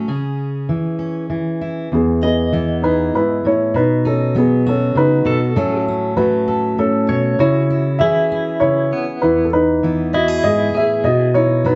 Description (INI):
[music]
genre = acoustic folk-pop ballad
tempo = 98 BPM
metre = 3/4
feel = straight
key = E major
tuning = A4 = 441 Hz
[part]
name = fingerpicked steel-string acoustic guitar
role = accompaniment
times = 0.0-11.8 s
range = E2 to A4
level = -21 LUFS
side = equal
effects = none
[part]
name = dark upright piano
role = melody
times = 1.9-11.8 s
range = B3 to E5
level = -18 LUFS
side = equal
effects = none
[part]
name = direct-recorded clean electric guitar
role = arpeggios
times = 2.2-11.3 s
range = B3 to D#5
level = -26 LUFS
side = equal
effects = tremolo
[sound]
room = wet studio ambience, RT60 0.5 s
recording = heard from further back in the room, nothing above 7.8 kHz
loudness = -17 LUFS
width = mono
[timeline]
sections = 0.0-1.9 A section; 1.9-11.8 B section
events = none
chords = 0.1 C#m; 1.9 E; 3.7 B; 5.6 F#m/A; 7.4 C#m; 9.2 E; 11.0 B